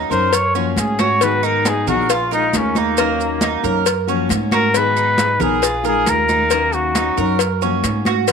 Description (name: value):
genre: latin, Cuban son and guajira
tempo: 136 BPM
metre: 4/4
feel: straight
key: unclear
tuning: A4 = 440 Hz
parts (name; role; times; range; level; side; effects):
- fingerpicked steel-string acoustic guitar; accompaniment; 0.0-8.3 s; Eb3 to Bb4; -23 LUFS; left 13 dB; none
- Cuban tres; arpeggios; 0.0-8.3 s; Bb3 to Bb4; -22 LUFS; right 14 dB; slapback echo
- upright bass; bass; 0.0-8.3 s; Bb1 to Ab2; -24 LUFS; right 1 dB; none
- mellow trumpet; melody; 0.1-7.4 s; Bb3 to Db5; -18 LUFS; left 1 dB; none
- congas; percussion; 0.1-8.3 s; none; -23 LUFS; right 1 dB; none
- maracas; percussion; 0.1-8.3 s; none; -26 LUFS; right 20 dB; none
- cowbell; percussion; 0.3-8.3 s; none; -22 LUFS; left 12 dB; none
room: moderate spring reverb, RT60 1.9 s, small room ambience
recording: 1960s-style stereo with parts hard left and right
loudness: -14 LUFS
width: side -6 dB against mid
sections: 0.0-8.3 A section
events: trumpet solo 0.0-8.3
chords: 0.3 Gbmaj7; 1.2 Abm7; 2.1 Bb7sus4; 3.0 Ebm7; 3.9 Gbmaj7; 4.7 Abm7; 5.6 Bb7sus4; 6.5 Ebm7; 7.4 Gbmaj7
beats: 0.33 0.77 | 1.21 1.66 2.10 2.54 | 2.98 3.42 3.86 4.31 | 4.75 5.19 5.63 6.07 | 6.52 6.96 7.40 7.84 | 8.29